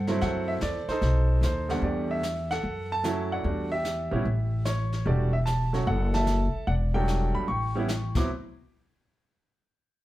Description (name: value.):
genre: jazz piano trio.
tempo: 149 BPM.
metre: 4/4.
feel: swing 67% on 8ths.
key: unclear.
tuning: A4 = 440 Hz.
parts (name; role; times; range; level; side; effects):
clear concert grand piano; melody; 0.0-8.3 s; E2 to D6; -29 LUFS; right 2 dB; none.
upright bass; bass; 0.0-8.3 s; E1 to G2; -27 LUFS; equal; none.
jazz brush drum kit; drums; 0.1-8.2 s; brushed snare drum, crash cymbal, hi-hat, kick drum, snare drum; -35 LUFS; left 2 dB; none.
room: wet studio reverb, RT60 0.7 s.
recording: heard from further back in the room.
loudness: -24 LUFS.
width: side -15 dB against mid.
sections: 0.0-1.8 A section; 1.8-8.3 B section; 8.3-9.9 C section.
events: none.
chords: 0.2 F#m7b5; 1.0 B7b9; 1.8 Em11; 2.6 F#m7; 3.4 Em11; 4.2 A7; 5.1 Em11; 5.9 F#m7; 6.7 Em11; 7.5 A7; 8.1 D13; 8.3 N.C..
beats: | 0.21 0.61 1.02 1.42 | 1.83 2.23 2.63 3.04 | 3.44 3.85 4.25 4.65 | 5.05 5.46 5.86 6.26 | 6.67 7.07 7.47 7.88 | 8.28.